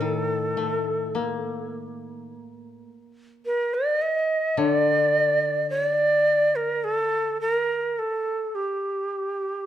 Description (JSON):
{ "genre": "japanese traditional", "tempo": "53 BPM", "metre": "2/4", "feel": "rubato", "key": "unclear", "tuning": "A4 = 445 Hz", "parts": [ { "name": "breathy bright shakuhachi", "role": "melody", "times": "0.0-9.7 s", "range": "G4 to Eb5", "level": "-22 LUFS", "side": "right 1 dB", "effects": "none" }, { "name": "koto", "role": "accompaniment", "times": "0.0-8.0 s", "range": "A2 to Bb3", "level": "-29 LUFS", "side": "left 4 dB", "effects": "none" } ], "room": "moderate recital hall reverb, RT60 1.4 s", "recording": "dark, warm production", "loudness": "-22 LUFS", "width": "side -11 dB against mid", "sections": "0.0-9.7 A section", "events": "none", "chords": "none", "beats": "| 0.01 1.16 | 2.33 3.48 | 4.60 5.72 | 6.84 7.97 | 9.11" }